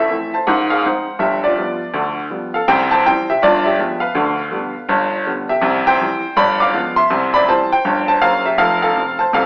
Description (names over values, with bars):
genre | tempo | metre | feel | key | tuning
jazz, stride piano | 162 BPM | 4/4 | swing 62% on 8ths | C major | A4 = 440 Hz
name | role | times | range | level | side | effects
clear upright piano | solo | 0.0-9.5 s | F1 to D6 | -14 LUFS | equal | none
room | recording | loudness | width
wet large studio reverb, RT60 1.2 s | band playing live in one room, AM radio sound | -13 LUFS | side -29 dB against mid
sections
0.0-9.5 A section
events
none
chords
0.5 Ab7; 1.2 G7; 2.7 C; 3.4 G7b9; 4.2 G7/D; 4.9 G7; 5.6 C; 6.4 G7b9; 7.1 C; 8.6 F